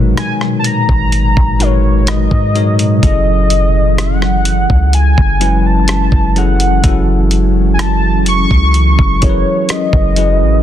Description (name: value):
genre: contemporary R&B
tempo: 63 BPM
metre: 4/4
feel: straight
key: unclear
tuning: A4 = 438 Hz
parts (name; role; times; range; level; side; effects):
- bell-like tine electric piano; accompaniment; 0.0-10.6 s; F#3 to C#5; -18 LUFS; left 4 dB; medium stereo tremolo
- ethereal airy pad; sustained chords; 0.0-10.6 s; A#2 to C#4; -19 LUFS; right 1 dB; ensemble chorus, built-in reverb, sidechain pumping
- warm 808-style bass; bass; 0.0-10.6 s; F#1 to G#2; -13 LUFS; equal; none
- warm velvety synth lead; melody; 0.2-10.6 s; C#5 to C#6; -17 LUFS; equal; chorus, tape echo
- dusty soul sampler-style drum kit; drums; 0.2-10.4 s; hi-hat, kick drum, rim click; -15 LUFS; equal; soft clipping on snare
room: little or no reverb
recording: dense, heavily limited modern master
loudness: -10 LUFS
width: side -11 dB against mid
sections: 0.0-10.6 A section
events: none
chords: 0.0 G#m9; 3.0 F#m9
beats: 0.17 1.12 2.08 | 3.03 3.98 4.93 5.89 | 6.84 7.79 8.74 9.70